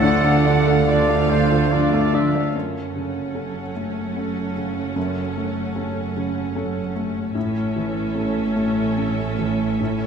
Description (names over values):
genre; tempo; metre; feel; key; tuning
cinematic, emotional film score for orchestra; 74 BPM; 3/4; rubato; unclear; A4 = 440 Hz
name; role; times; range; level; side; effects
muted symphonic violin section; melody; 0.0-10.1 s; E5 to F#5; -33 LUFS; left 4 dB; none
clear clarinet; second line; 0.0-2.2 s; A4; -26 LUFS; right 3 dB; none
muted symphonic violin section; second line; 0.0-10.1 s; F4 to F5; -32 LUFS; equal; none
silver concert flute; second line; 0.0-2.1 s; F5 to F#5; -30 LUFS; equal; none
warm oboe; second line; 0.0-2.6 s; B#4 to E5; -26 LUFS; right 2 dB; none
felt-muted upright piano; accompaniment; 0.0-10.1 s; D2 to D5; -24 LUFS; left 3 dB; none
muted symphonic viola section; accompaniment; 0.0-10.1 s; F3 to F4; -30 LUFS; equal; none
mellow French horn section; sustained chords; 0.0-2.2 s; A3 to D4; -25 LUFS; equal; none
muted symphonic cello section; bass; 0.0-10.1 s; F#2 to D3; -25 LUFS; right 5 dB; none
muted symphonic double bass section; bass; 0.0-10.1 s; F#1 to D2; -27 LUFS; right 5 dB; none
room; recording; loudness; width
wet scoring stage reverb, RT60 1.7 s; minimal, uncompressed stereo recording; -19 LUFS; side -7 dB against mid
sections
0.0-2.5 A section; 2.5-10.1 B section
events
none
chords
0.0 Dm; 2.5 F#m; 7.4 A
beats
| 0.01 0.86 1.71 | 2.54 3.35 4.16 | 4.96 5.76 6.56 | 7.36 8.15 8.97 | 9.80